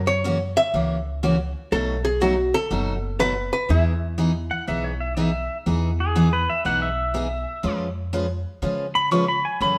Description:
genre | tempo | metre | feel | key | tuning
country, western swing | 122 BPM | 4/4 | swing 67% on 8ths | E major | A4 = 444 Hz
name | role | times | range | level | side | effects
archtop guitar, miked and amplified | melody | 0.0-5.1 s | E4 to E5 | -26 LUFS | equal | none
upright bass | bass | 0.0-9.8 s | F#1 to C#3 | -29 LUFS | equal | none
picked steel-string acoustic guitar | accompaniment | 0.2-9.8 s | B2 to B4 | -27 LUFS | equal | none
pedal steel guitar | second line | 4.5-9.8 s | G#4 to C#6 | -26 LUFS | equal | none
room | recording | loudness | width
moderate stone room reverb, RT60 1.1 s | band playing live in one room | -23 LUFS | mono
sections
0.0-5.7 A section; 5.7-9.8 B section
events
pedal steel guitar solo 5.7-9.8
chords
0.0 F#7; 1.7 B7; 3.7 Emaj7; 7.6 C#7/E#

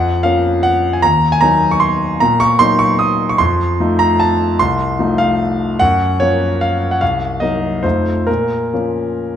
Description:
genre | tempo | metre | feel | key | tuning
classical, piano waltz | 132-162 BPM | 3/4 | rubato | Bb minor | A4 = 440 Hz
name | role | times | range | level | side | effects
clear grand piano | solo | 0.0-9.4 s | C2 to Eb6 | -12 LUFS | equal | none
room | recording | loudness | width
wet recital hall reverb, RT60 1.6 s | none | -12 LUFS | side -9 dB against mid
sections
0.0-9.4 A section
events
none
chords
0.0 Bbm; 1.0 Ebm; 3.4 F7; 5.8 Gbmaj7; 7.0 Cm7b5; 7.8 F7; 8.3 Bbm

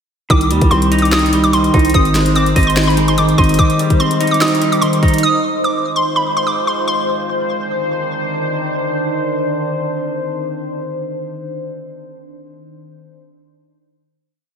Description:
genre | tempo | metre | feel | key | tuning
hip hop, trap | 146 BPM | 4/4 | half-time | C minor | A4 = 440 Hz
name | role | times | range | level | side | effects
hollow square pluck | melody | 0.3-8.1 s | B5 to Eb6 | -18 LUFS | equal | chorus, ping-pong delay
semi-hollow electric guitar | accompaniment | 0.3-5.2 s | Eb3 to Eb5 | -16 LUFS | equal | lush chorus
deep dark ambient pad | sustained chords | 1.0-10.9 s | Eb3 to C5 | -20 LUFS | equal | chorus, built-in reverb
growling 808-style bass | bass | 0.3-3.6 s | Ab1 to Eb2 | -17 LUFS | equal | none
trap drum kit | drums | 0.3-5.2 s | finger snaps, hi-hat, kick drum, snare drum | -17 LUFS | equal | none
room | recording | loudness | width
wet lush hall reverb, RT60 1.7 s, digital ambience | dreamy mix soaked in reverb | -13 LUFS | side -7 dB against mid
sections
0.3-6.9 hook; 6.9-10.2 final chord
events
none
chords
0.3 Cmadd9; 1.9 Ab; 3.6 Cmadd9; 5.2 Fm; 6.9 Cmadd9

